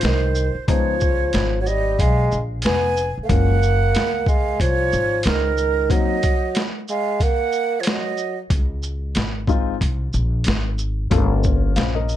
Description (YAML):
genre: hip hop, jazz-hop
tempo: 92 BPM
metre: 4/4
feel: swing 59% on 16ths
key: unclear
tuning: A4 = 440 Hz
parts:
  - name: dark bassoon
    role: melody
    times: 0.0-8.4 s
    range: Eb3 to Cb4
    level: -22 LUFS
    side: right 1 dB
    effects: plate reverb
  - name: breathy jazz flute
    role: second line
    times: 0.0-8.4 s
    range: Bb4 to Ab5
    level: -26 LUFS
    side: right 7 dB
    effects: plate reverb
  - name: upright bass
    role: bass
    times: 0.0-12.2 s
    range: F1 to Db2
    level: -22 LUFS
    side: equal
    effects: none
  - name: boom bap sampler-style drum kit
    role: drums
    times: 0.0-12.2 s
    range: hi-hat, kick drum, shaker, snare drum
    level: -21 LUFS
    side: equal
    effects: none
  - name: dark concert grand piano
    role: accompaniment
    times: 0.7-12.2 s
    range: F3 to F5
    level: -24 LUFS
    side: left 9 dB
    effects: plate reverb
room: light reverb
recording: dark, warm production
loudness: -18 LUFS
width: side -12 dB against mid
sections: 0.0-12.2 A section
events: break 5.9-8.5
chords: 0.0 Ab (rootless); 0.7 Db7; 3.3 Gbmaj9; 5.9 Ab9 (rootless); 8.5 Dbmaj7(no3); 11.1 Gm7b5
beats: 0.03 | 0.68 1.33 1.99 2.64 | 3.29 3.94 4.60 5.25 | 5.90 6.55 7.21 7.86 | 8.51 9.16 9.81 10.47 | 11.12 11.77